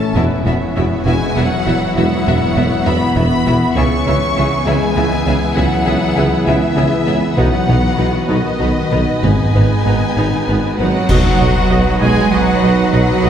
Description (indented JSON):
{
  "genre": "cinematic, epic orchestral film score",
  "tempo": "66 BPM (dotted quarters)",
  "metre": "12/8",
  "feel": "straight",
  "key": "C# minor",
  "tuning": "A4 = 441 Hz",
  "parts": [
    { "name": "warm symphonic violin section", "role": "melody", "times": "0.0-13.3 s", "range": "D#5 to C#6", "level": "-23 LUFS", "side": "left 3 dB", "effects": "none" },
    { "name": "clear trombone section", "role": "sustained chords", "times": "0.0-13.3 s", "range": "D#3 to C#4", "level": "-23 LUFS", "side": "equal", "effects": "none" },
    { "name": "mellow French horn section", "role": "sustained chords", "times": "0.0-13.3 s", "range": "D#3 to B4", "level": "-22 LUFS", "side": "left 2 dB", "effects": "none" },
    { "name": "rich studio string section", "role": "sustained chords", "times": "0.0-13.3 s", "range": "B3 to E5", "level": "-24 LUFS", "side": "equal", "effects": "none" },
    { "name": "rich symphonic violin section", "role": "second line", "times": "0.1-13.3 s", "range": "F#4 to Ab5", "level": "-24 LUFS", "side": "left 2 dB", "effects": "none" },
    { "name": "rich symphonic viola section", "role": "accompaniment", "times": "0.2-13.3 s", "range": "B3 to D#5", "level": "-24 LUFS", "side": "right 1 dB", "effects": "none" },
    { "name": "mellow tuba", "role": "bass", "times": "0.2-13.3 s", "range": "E1 to C#2", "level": "-21 LUFS", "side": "right 1 dB", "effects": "none" },
    { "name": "rich symphonic cello section", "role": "bass", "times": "0.2-13.3 s", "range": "E2 to Ab3", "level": "-20 LUFS", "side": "right 2 dB", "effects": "none" },
    { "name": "rich symphonic double bass section", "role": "bass", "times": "0.2-13.3 s", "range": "E1 to C#2", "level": "-20 LUFS", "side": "right 1 dB", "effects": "none" },
    { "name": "cymbal swell, clash cymbals and concert bass drum", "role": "percussion", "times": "7.4-12.3 s", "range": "none", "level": "-21 LUFS", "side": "equal", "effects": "none" },
    { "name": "timpani", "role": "percussion", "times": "9.2-10.1 s", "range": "G#2", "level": "-18 LUFS", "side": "equal", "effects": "none" },
    { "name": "bright trumpet", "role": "stabs", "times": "10.8-13.3 s", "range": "F#4 to Ab4", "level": "-22 LUFS", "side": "right 2 dB", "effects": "none" }
  ],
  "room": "wet scoring stage reverb, RT60 1.4 s",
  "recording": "heard from further back in the room",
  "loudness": "-12 LUFS",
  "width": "side -9 dB against mid",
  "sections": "0.0-11.1 A section; 11.1-13.3 B section",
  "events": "band accent 11.1-11.7",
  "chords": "0.2 Esus2; 3.8 C#m7; 7.4 B; 9.2 G#m; 11.1 B"
}